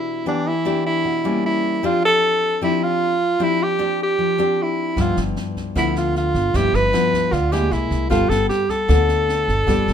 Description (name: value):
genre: bossa nova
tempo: 153 BPM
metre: 4/4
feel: straight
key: unclear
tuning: A4 = 440 Hz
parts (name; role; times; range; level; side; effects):
- warm tenor saxophone; melody; 0.0-9.9 s; D4 to B4; -19 LUFS; right 1 dB; none
- nylon-string guitar; accompaniment; 0.0-9.9 s; G2 to A4; -22 LUFS; left 4 dB; none
- upright bass; bass; 5.0-9.9 s; G1 to D2; -22 LUFS; right 1 dB; none
- jazz brush drum kit; drums; 5.0-9.9 s; kick drum, rim click, snare drum; -28 LUFS; right 1 dB; none
room: moderate studio ambience, RT60 0.5 s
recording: minimal, uncompressed stereo recording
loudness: -17 LUFS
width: side -8 dB against mid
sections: 0.0-9.9 A section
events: none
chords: 0.0 Em7; 1.4 Gdim7; 1.8 Dm11/F; 5.0 G6; 7.7 Caug7; 8.1 G9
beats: | 0.26 0.66 1.05 1.44 | 1.83 2.23 2.62 3.01 | 3.40 3.79 4.19 4.58 | 4.97 5.36 5.76 6.15 | 6.54 6.93 7.33 7.72 | 8.11 8.50 8.89 9.28 | 9.68